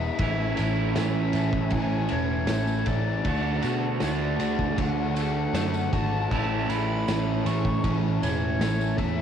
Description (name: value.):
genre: rock, shoegaze and dream pop.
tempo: 79 BPM.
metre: 4/4.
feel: straight.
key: A major.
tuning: A4 = 440 Hz.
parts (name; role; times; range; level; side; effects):
breathy bright jazz flute; melody; 0.0-9.2 s; C#5 to C#6; -33 LUFS; equal; cassette tape, analog delay.
twelve-string electric guitar; arpeggios; 0.0-9.2 s; E3 to A4; -40 LUFS; right 9 dB; lush chorus, cassette tape, analog delay.
biting overdriven guitar; riff; 0.0-9.2 s; A2 to F#4; -29 LUFS; right 10 dB; reverse reverb, cassette tape.
overdriven electric guitar; riff; 0.0-9.2 s; A2 to F#4; -30 LUFS; left 12 dB; wide subtle chorus, cassette tape.
vintage muted picked electric bass; bass; 0.0-9.2 s; E1 to B2; -28 LUFS; equal; none.
loose indie drum kit; drums; 0.2-9.2 s; crash cymbal, kick drum, ride cymbal, snare drum; -31 LUFS; equal; cassette tape.
tambourine; percussion; 0.6-9.1 s; none; -45 LUFS; right 14 dB; none.
room: light reverb.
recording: home recording on cassette.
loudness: -23 LUFS.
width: side -8 dB against mid.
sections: 0.2-9.2 A section.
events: none.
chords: 0.2 A; 3.3 D; 6.3 A.